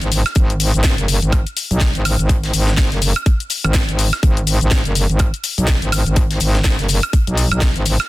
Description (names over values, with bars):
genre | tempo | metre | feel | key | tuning
bass house | 124 BPM | 4/4 | swing 58% on 16ths | G# minor | A4 = 440 Hz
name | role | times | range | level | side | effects
metallic wobble bass | bass | 0.0-8.0 s | F#1 to B1 | -17 LUFS | equal | chorus, sidechain pumping
garage drum kit | drums | 0.0-8.1 s | hi-hat, shaker, snare drum, woodblock | -21 LUFS | left 1 dB | none
modern studio drum kit | drums | 0.1-8.1 s | hi-hat, snare drum | -31 LUFS | left 3 dB | none
electronic kick drum | drums | 0.4-7.7 s | none | -15 LUFS | equal | none
room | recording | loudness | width
studio ambience | dense, heavily limited modern master | -14 LUFS | side -18 dB against mid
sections
0.0-8.1 A section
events
none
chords
none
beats
| 0.36 0.84 1.33 1.81 | 2.29 2.78 3.26 3.75 | 4.23 4.71 5.20 5.68 | 6.17 6.65 7.13 7.62